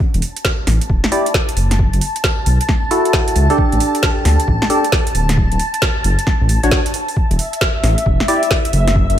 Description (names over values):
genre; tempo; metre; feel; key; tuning
UK garage, two-step garage; 134 BPM; 4/4; swing 64% on 16ths; E minor; A4 = 439 Hz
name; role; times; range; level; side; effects
soft string machine; sustained chords; 0.4-9.2 s; E5 to A5; -22 LUFS; left 1 dB; ensemble chorus, sidechain pumping
electronic kick drum; drums; 0.0-9.1 s; none; -18 LUFS; equal; overdrive
dark detuned saw bass; bass; 0.1-9.2 s; D1 to D2; -15 LUFS; equal; sidechain pumping
garage drum kit; drums; 0.1-9.2 s; hi-hat, snare drum; -20 LUFS; right 1 dB; overdrive
percussive organ stab; stabs; 1.1-8.4 s; D4 to D5; -18 LUFS; equal; lush chorus, analog delay
room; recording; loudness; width
light reverb; none; -13 LUFS; side -11 dB against mid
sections
0.0-9.2 A section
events
none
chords
0.0 Em7; 1.8 F#m7; 3.6 A7sus4; 5.4 Dmaj7; 7.2 Em7